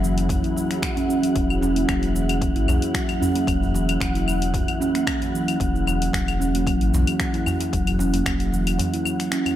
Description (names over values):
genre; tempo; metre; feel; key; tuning
organic downtempo; 113 BPM; 4/4; swing 53% on 16ths; unclear; A4 = 436 Hz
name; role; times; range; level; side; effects
warm analog pad; sustained chords; 0.0-9.6 s; F#3 to G#4; -30 LUFS; left 1 dB; chorus, phaser, sidechain pumping
steel tongue drum; arpeggios; 0.0-9.4 s; E3 to F#4; -23 LUFS; right 2 dB; tape echo
warm sub bass; bass; 0.0-8.8 s; E1 to B1; -24 LUFS; equal; sidechain pumping
afro-pop drum kit; drums; 0.0-9.6 s; claves, finger snaps, hi-hat, shaker; -29 LUFS; left 3 dB; none
djembe; percussion; 0.0-9.6 s; none; -31 LUFS; equal; none
wind-like tuned noise texture; texture; 0.0-9.6 s; F#4 to F#5; -32 LUFS; left 1 dB; built-in reverb
electronic kick drum; drums; 0.3-8.4 s; none; -28 LUFS; equal; overdrive
room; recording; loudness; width
light reverb, digital ambience; none; -20 LUFS; side -12 dB against mid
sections
0.0-9.6 A section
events
none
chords
0.0 F#sus2; 1.4 E